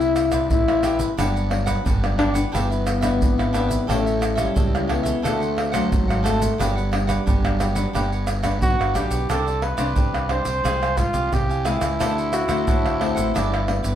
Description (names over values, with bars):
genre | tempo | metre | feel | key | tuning
samba and choro | 89 BPM | 4/4 | straight | G major, C major from 9.3 s | A4 = 440 Hz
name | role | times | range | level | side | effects
mellow trombone | second line | 0.0-13.9 s | F#3 to F#4 | -24 LUFS | left 3 dB | none
cavaquinho | accompaniment | 0.0-13.9 s | D4 to Ab5 | -30 LUFS | right 3 dB | none
nylon-string guitar | accompaniment | 0.0-13.9 s | G2 to F#4 | -30 LUFS | left 4 dB | none
fuzz fingered electric bass | bass | 0.0-13.9 s | G1 to D2 | -25 LUFS | equal | overdrive
maracas, pandeiro, tamborim and surdo | percussion | 0.0-13.9 s | none | -24 LUFS | right 1 dB | none
mellow trumpet | melody | 8.6-13.9 s | E4 to C5 | -25 LUFS | equal | none
room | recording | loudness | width
wet studio reverb, RT60 0.8 s | heard from further back in the room | -19 LUFS | side -10 dB against mid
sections
0.0-9.3 A section; 9.3-13.9 B section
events
trombone solo 0.0-9.3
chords
0.0 Cmaj7; 1.2 Gmaj7; 2.5 Em7/G; 3.9 A7; 5.2 D7; 6.6 Gmaj7; 9.3 Csus2; 10.7 Fmadd9/C; 12.0 D7; 13.4 G